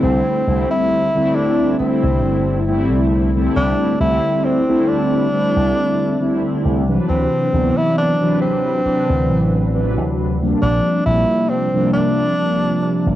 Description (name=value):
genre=vaporwave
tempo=68 BPM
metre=4/4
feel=swing 54% on 16ths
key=C lydian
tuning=A4 = 438 Hz
part: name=breathy tenor saxophone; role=melody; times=0.0-13.2 s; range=C4 to E4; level=-20 LUFS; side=equal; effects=vintage 12-bit sampler grit, cassette tape, tape echo
part: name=mellow synth brass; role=accompaniment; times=0.0-13.2 s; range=C3 to B4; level=-17 LUFS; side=equal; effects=wide subtle chorus, cassette tape
part: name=slap bass with an envelope filter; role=bass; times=0.0-13.2 s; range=G1 to D2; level=-19 LUFS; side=equal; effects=tube saturation
room=light reverb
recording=home recording on cassette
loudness=-15 LUFS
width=side -13 dB against mid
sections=0.0-13.2 A section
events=none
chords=0.0 C69; 7.1 D13; 10.6 Bb69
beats=| 0.03 0.91 1.79 2.68 | 3.56 4.44 5.33 6.21 | 7.09 7.97 8.85 9.74 | 10.62 11.50 12.38